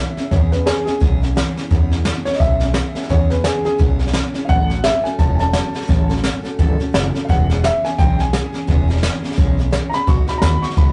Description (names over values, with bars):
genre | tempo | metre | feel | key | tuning
rockabilly | 172 BPM | 4/4 | swing 59% on 8ths | E major | A4 = 441 Hz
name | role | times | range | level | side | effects
warm upright piano | melody | 0.0-10.9 s | G#4 to C#6 | -24 LUFS | equal | none
picked steel-string acoustic guitar | accompaniment | 0.0-10.9 s | A2 to A4 | -27 LUFS | equal | none
upright bass | bass | 0.2-10.9 s | E1 to E2 | -22 LUFS | equal | none
jazz brush drum kit | drums | 0.2-10.9 s | hi-hat, kick drum, snare drum | -21 LUFS | equal | none
room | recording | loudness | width
moderate studio reverb, RT60 0.5 s | rough rehearsal-room recording, tube saturation, nothing above 10.6 kHz | -17 LUFS | mono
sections
0.0-10.9 A section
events
none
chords
0.0 E6; 4.5 A6; 7.3 E6; 10.1 B6